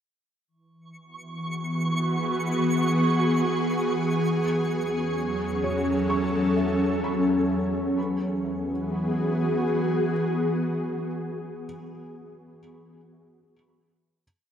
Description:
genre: ambient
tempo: free time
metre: none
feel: none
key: E major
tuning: A4 = 440 Hz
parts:
  - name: ethereal airy pad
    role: sustained chords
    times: 1.3-12.1 s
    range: E2 to A4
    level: -24 LUFS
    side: equal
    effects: ensemble chorus, built-in reverb
  - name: twinkling granular texture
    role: texture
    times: 1.1-8.0 s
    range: C#6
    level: -33 LUFS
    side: right 2 dB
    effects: built-in reverb, wide subtle chorus
  - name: felt-muted upright piano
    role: arpeggios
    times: 5.6-14.2 s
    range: F#3 to C#6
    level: -36 LUFS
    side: equal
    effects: tape echo
room: wet plate reverb, RT60 2.6 s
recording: dreamy mix soaked in reverb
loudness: -23 LUFS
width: side -9 dB against mid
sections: 0.5-8.0 A section; 8.0-11.7 final chord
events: fade-out on felt piano 0.5-8.0; fade-out on synth texture 0.5-8.0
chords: 0.5 E; 4.2 F#m/E; 8.0 E

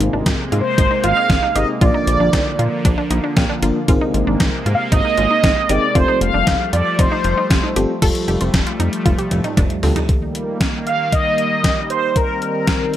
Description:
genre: synth-pop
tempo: 116 BPM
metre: 4/4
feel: straight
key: Eb major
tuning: A4 = 440 Hz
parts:
  - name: FM electric piano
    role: accompaniment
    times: 0.0-10.0 s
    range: Bb3 to Bb5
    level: -24 LUFS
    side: left 2 dB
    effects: chorus
  - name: sweeping resonant pad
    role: sustained chords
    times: 0.0-13.0 s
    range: C3 to C4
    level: -23 LUFS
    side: right 1 dB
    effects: chorus
  - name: wide unison pluck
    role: arpeggios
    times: 0.0-10.1 s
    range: C4 to A4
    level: -26 LUFS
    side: right 2 dB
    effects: digital delay
  - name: chorused synth bass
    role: bass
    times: 0.0-9.9 s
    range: F1 to Bb2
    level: -20 LUFS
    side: equal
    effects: none
  - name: gated 80s digital drum machine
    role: drums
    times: 0.0-13.0 s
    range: crash cymbal, hi-hat, kick drum, snare drum, toms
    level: -18 LUFS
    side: equal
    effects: gated reverb, gated reverb snare, overdrive
  - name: mellow synth brass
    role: melody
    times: 0.6-7.7, 10.9-13.0 s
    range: Bb4 to F5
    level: -18 LUFS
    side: right 1 dB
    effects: chorus, digital delay
room: light reverb, digital ambience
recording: none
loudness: -14 LUFS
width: side -12 dB against mid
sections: 0.0-8.0 A section; 8.0-10.1 B section; 10.1-13.0 C section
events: FM electric piano fill 2.8-3.9; drum fill 9.1-10.1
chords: 0.0 Abadd9; 1.8 Bb; 3.9 Abadd9; 6.0 Fadd9; 10.1 Eb

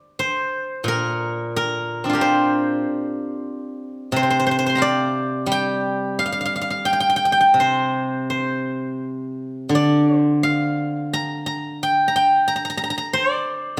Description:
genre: chinese traditional, Chinese solo plucked strings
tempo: 81-94 BPM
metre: 4/4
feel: rubato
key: unclear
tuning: A4 = 440 Hz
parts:
  - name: steel-string zither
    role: solo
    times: 0.0-13.8 s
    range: Bb2 to C6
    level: -21 LUFS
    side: equal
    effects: none
room: moderate recital hall reverb, RT60 1.3 s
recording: none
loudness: -21 LUFS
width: mono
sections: 0.0-13.8 A section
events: none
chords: none

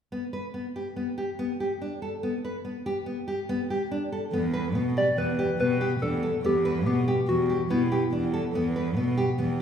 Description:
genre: contemporary instrumental, chamber music in an uneven meter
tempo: 142 BPM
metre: 5/4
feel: straight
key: E minor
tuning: A4 = 441 Hz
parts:
  - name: nylon-string guitar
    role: arpeggios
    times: 0.1-9.5 s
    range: B3 to B4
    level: -28 LUFS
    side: left 1 dB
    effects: none
  - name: warm cello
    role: bass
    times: 4.3-9.6 s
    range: E2 to B2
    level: -28 LUFS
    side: right 2 dB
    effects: none
  - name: soft struck synth lead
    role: melody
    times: 5.0-8.3 s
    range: E4 to D5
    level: -27 LUFS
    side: left 1 dB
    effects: chorus
room: wet recital hall reverb, RT60 1.8 s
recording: heard from further back in the room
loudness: -25 LUFS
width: side -8 dB against mid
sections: 0.1-4.3 A section; 4.3-9.6 B section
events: none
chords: 0.1 N.C.; 4.3 Em

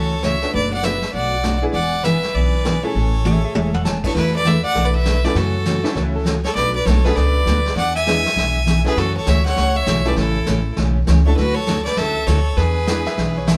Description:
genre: country, western swing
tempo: 199 BPM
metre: 4/4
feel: swing 63% on 8ths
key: unclear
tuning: A4 = 441 Hz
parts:
  - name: clear fiddle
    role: melody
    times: 0.0-13.5 s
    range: A4 to G#5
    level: -25 LUFS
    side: equal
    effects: none
  - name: clear fiddle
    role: second line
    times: 0.0-13.5 s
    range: E4 to E5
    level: -27 LUFS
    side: equal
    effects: none
  - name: picked steel-string acoustic guitar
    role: accompaniment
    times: 0.0-13.6 s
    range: B2 to A4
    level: -25 LUFS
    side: equal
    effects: none
  - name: upright bass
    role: bass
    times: 0.0-13.6 s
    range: E1 to F#2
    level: -22 LUFS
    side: equal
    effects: none
  - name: vintage brush drum kit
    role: drums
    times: 0.2-13.6 s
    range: brushed snare drum, crash cymbal, hi-hat, kick drum, snare drum, toms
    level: -29 LUFS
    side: equal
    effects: none
  - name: tack piano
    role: accompaniment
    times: 0.4-13.0 s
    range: G#3 to B4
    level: -28 LUFS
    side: equal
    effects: none
  - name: clean lap steel guitar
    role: second line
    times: 3.3-6.4, 13.1-13.6 s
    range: E4 to A5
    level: -29 LUFS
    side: equal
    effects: none
room: moderate stone room reverb, RT60 1.1 s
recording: band playing live in one room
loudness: -18 LUFS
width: mono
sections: 0.0-4.2 A section; 4.2-13.6 B section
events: drum fill 3.2-3.9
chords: 0.0 F#m7; 0.5 Bm7/F#; 1.7 E7; 4.2 E7sus4; 5.4 F#m7; 6.6 Bm7; 7.8 E7; 9.0 F#m7; 10.2 A7; 11.4 Dadd9; 12.6 E7

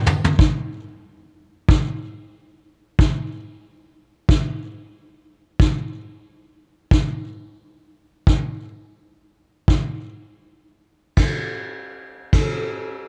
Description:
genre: pop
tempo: 78-93 BPM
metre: 4/4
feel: swing 55% on 16ths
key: none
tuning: none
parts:
  - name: vintage brush drum kit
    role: drums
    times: 0.1-12.6 s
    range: kick drum, ride cymbal, toms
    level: -21 LUFS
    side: equal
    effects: none
room: little or no reverb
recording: dark, warm production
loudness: -21 LUFS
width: mono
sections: 0.4-11.2 A section; 11.2-13.1 B section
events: drum fill 0.0-0.4; slowing down 5.6-11.2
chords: none

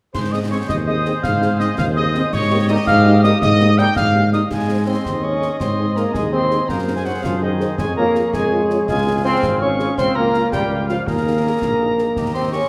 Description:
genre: military-style march for wind band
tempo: 110 BPM (dotted quarters)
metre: 6/8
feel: straight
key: Ab major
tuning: A4 = 440 Hz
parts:
  - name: dark trumpet section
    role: melody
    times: 0.1-12.7 s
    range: Eb4 to G5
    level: -27 LUFS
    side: equal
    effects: none
  - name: piccolo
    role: second line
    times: 0.1-12.7 s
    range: Eb5 to G6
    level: -27 LUFS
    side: equal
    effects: none
  - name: warm woodwind section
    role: second line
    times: 0.1-12.7 s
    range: F4 to F5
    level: -30 LUFS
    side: equal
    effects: none
  - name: mellow tuba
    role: bass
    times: 0.1-12.6 s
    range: Ab1 to Ab2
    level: -22 LUFS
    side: equal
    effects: none
  - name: concert snare drum, clash cymbals and concert bass drum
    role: drums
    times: 0.1-12.7 s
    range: none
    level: -30 LUFS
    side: equal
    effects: none
  - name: mellow French horn section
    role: accompaniment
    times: 0.3-12.6 s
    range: Bb3 to Db5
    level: -30 LUFS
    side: equal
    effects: none
  - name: mellow trombone section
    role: sustained chords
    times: 0.5-12.7 s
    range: Eb3 to Eb4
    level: -23 LUFS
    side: equal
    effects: none
room: wet scoring stage reverb, RT60 1.6 s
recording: none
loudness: -18 LUFS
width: mono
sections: 0.1-4.5 A section; 4.5-12.7 B section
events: none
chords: 0.1 Ab; 2.3 Eb7/Ab; 4.5 Ab; 6.7 Ab7/Gb; 7.8 Db/F; 8.9 Db; 10.0 Bbm/Db; 11.1 Ebsus4; 12.2 Eb

